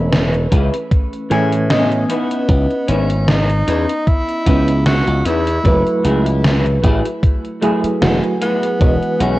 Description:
vaporwave; 76 BPM; 4/4; swing 54% on 16ths; A4 = 437 Hz
mellow FM electric piano; accompaniment; 0.0-9.4 s; E3 to G#5; -19 LUFS; right 1 dB; tremolo, wide subtle chorus, analog delay
glassy slap bass; bass; 0.0-9.4 s; E1 to A2; -17 LUFS; equal
gated 80s digital drum machine; drums; 0.1-9.4 s; hi-hat, snare drum; -19 LUFS; equal; gated reverb, gated reverb snare, overdrive
semi-hollow electric guitar; riff; 0.5-9.4 s; A3 to B4; -25 LUFS; left 3 dB; ensemble chorus, vintage 12-bit sampler grit, analog delay
electronic kick drum; drums; 0.5-9.0 s; -14 LUFS; equal; overdrive
breathy tenor saxophone; melody; 2.1-9.4 s; B3 to F#4; -22 LUFS; equal; tape echo
warbly tape-like pad; sustained chords; 9.0-9.4 s; B4 to G#5; -24 LUFS; left 1 dB; chorus, built-in reverb
light reverb; worn, warbling old tape, cassette tape, warbly pitch drift; -13 LUFS; side -17 dB against mid
0.0-9.4 A section
0.0 Amaj7; 2.1 C#m9; 5.6 F#m9; 8.8 Emaj9
0.12 0.91 1.70 | 2.49 3.28 4.07 4.86 | 5.65 6.44 7.23 8.02 | 8.81

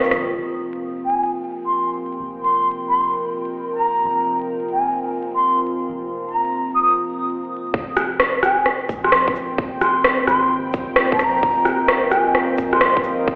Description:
future garage; 130 BPM; 4/4; swing 67% on 16ths; F minor; A4 = 440 Hz
dark analog pad; sustained chords; 0.0-13.4 s; C4 to G5; -27 LUFS; equal; chorus, sidechain pumping
soft 808-style bass; bass; 0.0-13.4 s; F1 to Bb1; -43 LUFS; equal
electronic shaker and rim click; drums; 0.0-0.2, 8.0-13.2 s; -21 LUFS; equal; low-pass filter on perc, low-pass filter on snare, low-pass filter on room
baroque flute; melody; 1.1-13.0 s; Ab5 to Eb6; -22 LUFS; equal; dub echo
electronic kick drum; drums; 7.7-13.4 s; -26 LUFS; equal
moderate lush hall reverb, RT60 2.5 s; played on a big sound system in a bare room, large studio reverb, vinyl crackle, telephone sound; -20 LUFS; mono
0.4-7.7 A section; 7.7-13.4 B section
break 0.0-0.4
0.4 F5; 7.7 Fm7
| 0.36 0.82 1.28 1.74 | 2.20 2.66 3.12 3.59 | 4.05 4.51 4.97 5.43 | 5.89 6.36 6.82 7.28 | 7.74 8.20 8.66 9.12 | 9.59 10.05 10.51 10.97 | 11.43 11.89 12.36 12.82 | 13.28

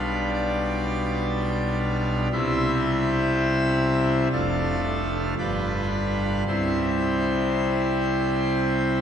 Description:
classical, chorale-style piece for pipe organ; 54-61 BPM; 4/4; rubato; C major; A4 = 442 Hz
pipe organ, full organ; solo; 0.0-9.0 s; F1 to E5; -22 LUFS; equal
wet cathedral reverb, RT60 4.6 s; -22 LUFS; side -8 dB against mid
0.0-9.0 A section
0.0 G7/B; 2.3 C; 4.3 Dm/F; 5.4 G7; 6.5 C
0.33 1.32 | 2.32 3.31 4.32 5.37 | 6.46 7.55 8.64

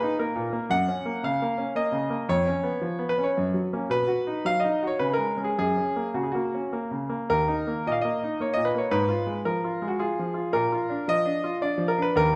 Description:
classical, baroque-style suite movement for grand piano; 111 BPM; 3/4; rubato; F# major; A4 = 437 Hz
bright concert grand piano; solo; 0.0-12.4 s; Eb2 to F#5; -26 LUFS; equal
wet recital hall reverb, RT60 1.6 s; -26 LUFS; mono
0.0-7.3 A section; 7.3-12.4 A section
0.0 Eb5; 0.7 F#; 2.3 C#7/E#; 3.4 F#; 3.9 B; 5.0 C#5; 5.6 F#; 7.3 Eb5; 8.9 Fdim/Ab; 10.5 Bb
0.17 | 0.71 1.24 1.77 | 2.31 2.84 3.37 | 3.90 4.45 5.00 | 5.58 6.15 6.72 | 7.29 7.84 8.39 | 8.92 9.46 10.00 | 10.54 11.08 11.61 | 12.15

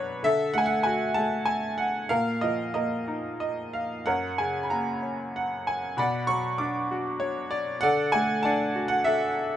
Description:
classical, lyrical solo piano; 96 BPM; 3/4; rubato; A4 = 438 Hz
bright upright piano; solo; 0.0-9.6 s; F#2 to D6; -24 LUFS; equal
light reverb; nothing above 10.8 kHz; -24 LUFS; side -11 dB against mid
0.0-9.6 A section
0.2 D; 2.1 A#sus4; 4.1 F#; 6.0 Bm; 7.8 D
| 0.24 0.85 1.47 | 2.11 2.75 3.41 | 4.06 4.71 5.34 | 5.97 6.60 7.22 | 7.83 8.44 9.06

